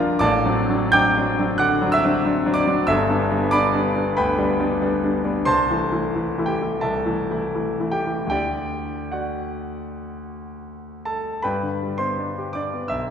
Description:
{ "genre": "classical, romantic character piece for solo piano", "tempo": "73-96 BPM", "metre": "4/4", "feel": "rubato", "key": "G major", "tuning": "A4 = 442 Hz", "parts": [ { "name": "clear concert grand piano", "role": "solo", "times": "0.0-13.1 s", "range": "G1 to G6", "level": "-19 LUFS", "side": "equal", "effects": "none" } ], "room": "wet concert hall reverb, RT60 2.5 s", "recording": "recorded in a church or concert hall", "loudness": "-19 LUFS", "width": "side -8 dB against mid", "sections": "0.0-11.4 A section; 11.4-13.1 B section", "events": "none", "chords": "0.2 D7/A; 2.9 G; 5.5 Am/C; 8.3 D; 11.4 G" }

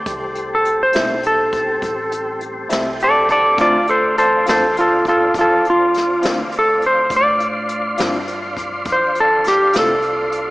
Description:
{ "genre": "slow blues", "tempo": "68 BPM (dotted quarters)", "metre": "12/8", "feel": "straight", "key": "unclear", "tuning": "A4 = 439 Hz", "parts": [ { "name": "clean lap steel guitar", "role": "melody", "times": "0.0-10.5 s", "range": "F4 to D5", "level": "-15 LUFS", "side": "equal", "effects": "none" }, { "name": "tonewheel organ", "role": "sustained chords", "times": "0.0-10.5 s", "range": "G3 to C5", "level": "-25 LUFS", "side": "equal", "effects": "slow rotary speaker, chorus vibrato" }, { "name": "upright bass", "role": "bass", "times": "0.0-10.5 s", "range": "A1 to A2", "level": "-34 LUFS", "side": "equal", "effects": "none" }, { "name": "jazz brush drum kit", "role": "drums", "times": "0.1-10.5 s", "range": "hi-hat, kick drum, snare drum", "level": "-26 LUFS", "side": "equal", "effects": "none" }, { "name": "electric guitar through a small old amp", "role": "accompaniment", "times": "0.9-9.9 s", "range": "A2 to F4", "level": "-25 LUFS", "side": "left 1 dB", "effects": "harmonic tremolo, slapback echo" } ], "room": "moderate lush hall reverb, RT60 2.6 s", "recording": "big arena sound, small speaker sound", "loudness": "-14 LUFS", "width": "side -20 dB against mid", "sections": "0.0-10.5 A section", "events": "electric slide guitar solo 0.0-10.5", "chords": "0.0 Am7; 3.6 Dm7" }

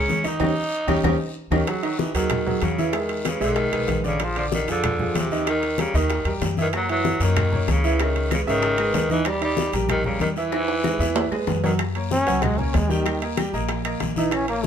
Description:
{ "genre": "latin, salsa", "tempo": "190 BPM", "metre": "4/4", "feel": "straight", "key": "unclear", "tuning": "A4 = 440 Hz", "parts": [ { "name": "breathy tenor saxophone", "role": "melody", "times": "0.0-11.7 s", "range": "B#2 to D#4", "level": "-25 LUFS", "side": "equal", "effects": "none" }, { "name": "bright upright piano", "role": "accompaniment", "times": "0.0-14.7 s", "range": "C#3 to G5", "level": "-26 LUFS", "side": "right 2 dB", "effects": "none" }, { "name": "upright bass", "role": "bass", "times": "0.0-14.7 s", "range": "G#1 to F#2", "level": "-27 LUFS", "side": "left 1 dB", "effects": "none" }, { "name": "bongos", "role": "percussion", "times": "0.1-14.7 s", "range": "none", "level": "-32 LUFS", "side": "left 6 dB", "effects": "none" }, { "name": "congas", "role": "percussion", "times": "0.1-14.7 s", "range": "none", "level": "-28 LUFS", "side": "left 2 dB", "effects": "none" }, { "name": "guiro", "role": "percussion", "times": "0.1-14.7 s", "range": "none", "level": "-38 LUFS", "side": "left 4 dB", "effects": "none" }, { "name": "timbales", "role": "percussion", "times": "0.2-14.6 s", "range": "none", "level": "-31 LUFS", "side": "right 6 dB", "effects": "none" }, { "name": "claves", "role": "percussion", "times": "0.4-1.6, 6.7-14.5 s", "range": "none", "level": "-36 LUFS", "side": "left 7 dB", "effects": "none" }, { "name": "bright trombone", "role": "melody", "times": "12.1-14.7 s", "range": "D#3 to D#4", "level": "-24 LUFS", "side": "left 1 dB", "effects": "none" } ], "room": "moderate studio reverb, RT60 0.9 s", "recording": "minimal, uncompressed stereo recording", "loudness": "-20 LUFS", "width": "side -8 dB against mid", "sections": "0.0-1.7 A section; 1.7-11.8 A section; 11.8-14.7 B section", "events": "drum fill 0.4-1.7, 10.5-11.8; band accent 0.4-1.7; trombone solo 11.8-14.7", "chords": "0.4 D#7; 1.7 G#5; 2.9 Emaj7; 4.2 A#7; 5.5 D#; 6.7 F#7; 8.0 C#m7; 9.3 D#; 10.5 E; 11.8 F#; 13.1 D#" }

